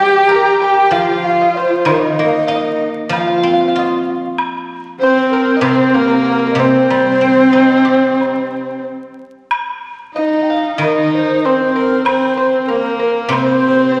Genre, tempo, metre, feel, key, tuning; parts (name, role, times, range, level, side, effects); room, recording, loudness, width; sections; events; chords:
chinese traditional, Chinese chamber ensemble; 95 BPM; 4/4; rubato; C yu mode; A4 = 440 Hz
breathy mellow xiao; melody; 0.0-14.0 s; Bb4 to Bb5; -22 LUFS; equal
clear horsehead fiddle; second line; 0.0-14.0 s; Bb3 to G4; -18 LUFS; equal
mellow hollow dizi; second line; 0.0-14.0 s; Bb4 to Bb5; -22 LUFS; equal
pipa; second line; 0.0-14.0 s; Bb4 to Bb5; -24 LUFS; equal
guzheng; accompaniment; 0.0-14.0 s; C3 to Bb4; -20 LUFS; equal
woodblock; percussion; 0.6-13.5 s; -26 LUFS; equal
wet concert hall reverb, RT60 1.8 s; vinyl crackle; -14 LUFS; mono
0.0-9.5 A section; 9.5-14.0 B section